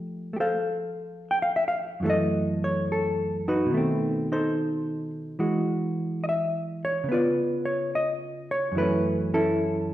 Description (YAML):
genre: jazz ballad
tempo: 72 BPM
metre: 4/4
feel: swing 67% on 8ths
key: unclear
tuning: A4 = 440 Hz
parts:
  - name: hollow-body jazz guitar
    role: solo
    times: 0.0-9.9 s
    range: F#2 to G5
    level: -24 LUFS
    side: equal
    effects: none
room: wet recital hall reverb, RT60 1.3 s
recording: recorded in a church or concert hall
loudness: -24 LUFS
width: side -13 dB against mid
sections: 0.0-9.9 A section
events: none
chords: 0.0 Fadd9; 2.0 F#m7; 3.7 B7b9; 5.4 Eadd9; 7.1 C#7b9; 8.7 F#m7